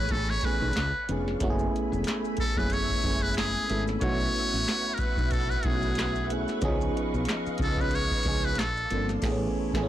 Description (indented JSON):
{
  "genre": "R&B, neo-soul",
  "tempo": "92 BPM",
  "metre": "4/4",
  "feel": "swing 56% on 16ths",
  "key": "F# dorian",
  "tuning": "A4 = 440 Hz",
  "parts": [
    { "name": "trumpet with metal mute", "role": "melody", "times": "0.0-9.1 s", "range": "G#4 to C#5", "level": "-30 LUFS", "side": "equal", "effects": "plate reverb" },
    { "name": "FM electric piano", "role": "accompaniment", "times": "0.0-9.9 s", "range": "D#3 to B4", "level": "-31 LUFS", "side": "right 1 dB", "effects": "chorus, plate reverb" },
    { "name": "soft string machine", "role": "sustained chords", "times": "0.0-9.9 s", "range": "A3 to C#6", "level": "-37 LUFS", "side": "equal", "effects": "phaser, ensemble chorus, plate reverb" },
    { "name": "woody fretless electric bass", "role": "bass", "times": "0.0-9.9 s", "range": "E1 to C#2", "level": "-31 LUFS", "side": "equal", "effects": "transformer saturation, analog chorus" },
    { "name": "booming analog drum machine", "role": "drums", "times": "0.1-9.9 s", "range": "crash cymbal, handclaps, hi-hat, kick drum, snare drum", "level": "-30 LUFS", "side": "equal", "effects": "none" },
    { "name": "maracas and finger snaps", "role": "percussion", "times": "1.4-9.2 s", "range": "none", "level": "-45 LUFS", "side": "left 8 dB", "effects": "none" }
  ],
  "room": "light reverb",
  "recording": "blown-out, overdriven recording, overdrive",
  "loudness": "-25 LUFS",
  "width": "side -12 dB against mid",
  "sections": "0.0-9.9 A section",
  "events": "band accent 9.2-9.9",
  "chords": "0.0 Amaj9; 0.8 C#7b9; 1.4 F#m11; 4.0 B9sus4; 6.6 C#9; 8.6 A#maj9; 9.2 Amaj9",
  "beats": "0.10 0.76 | 1.41 2.06 2.71 3.36 | 4.02 4.67 5.32 5.97 | 6.62 7.28 7.93 8.58 | 9.23"
}